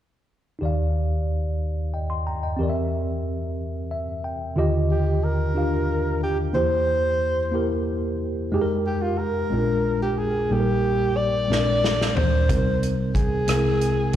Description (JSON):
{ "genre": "slow gospel", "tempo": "61 BPM (dotted quarters)", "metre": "6/8", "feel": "straight", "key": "Eb major", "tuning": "A4 = 440 Hz", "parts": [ { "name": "mellow tine electric piano", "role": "accompaniment", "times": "0.6-14.2 s", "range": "Bb1 to C6", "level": "-23 LUFS", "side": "equal", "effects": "medium stereo tremolo, slapback echo" }, { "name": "warm alto saxophone", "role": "melody", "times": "4.9-14.2 s", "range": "F4 to D5", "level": "-24 LUFS", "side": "right 1 dB", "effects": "slapback echo" }, { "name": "natural country drum kit", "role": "drums", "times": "11.5-14.2 s", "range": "hi-hat, kick drum, rim click, snare drum, toms", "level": "-23 LUFS", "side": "equal", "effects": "none" } ], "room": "light reverb", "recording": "live gig heard through the venue's PA, club reverb", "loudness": "-21 LUFS", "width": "side -11 dB against mid", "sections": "0.6-4.6 A section; 4.6-14.2 B section", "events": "tine electric piano fill 3.6-4.6; drum fill 11.5-12.5", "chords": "0.6 Ebmaj9; 2.6 C7/E; 4.6 Ebmaj9; 6.6 C7/E; 8.5 Fm11; 9.5 Bb7; 10.5 Eb/Bb; 11.5 Bb9; 12.5 Cm7; 13.5 C7b13" }